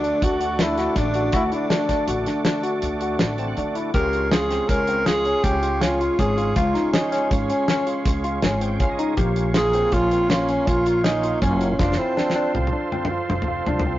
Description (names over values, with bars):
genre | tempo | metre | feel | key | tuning
progressive instrumental, band music in an uneven meter | 161 BPM | 7/4 | straight | unclear | A4 = 440 Hz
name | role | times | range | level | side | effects
breathy tenor saxophone | melody | 0.0-12.7 s | C4 to Bb4 | -22 LUFS | equal | none
tonewheel organ | accompaniment | 0.0-14.0 s | Bb2 to A5 | -28 LUFS | right 3 dB | overdrive, chorus vibrato
barky tine electric piano | arpeggios | 0.0-14.0 s | C4 to G4 | -26 LUFS | left 2 dB | analog delay
upright bass | bass | 0.0-14.0 s | F1 to D3 | -26 LUFS | equal | none
damped 70s drum kit | drums | 0.0-13.9 s | hi-hat, kick drum, snare drum, toms | -24 LUFS | equal | none
room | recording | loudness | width
moderate stone room reverb, RT60 1.2 s | rough rehearsal-room recording, tube saturation, nothing above 7.5 kHz | -19 LUFS | side -14 dB against mid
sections
0.0-14.0 A section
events
tonewheel organ fill 3.2-4.0, 8.4-9.2; drum fill 11.8-14.0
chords
0.0 D; 4.0 Db; 9.2 Bbm; 11.8 F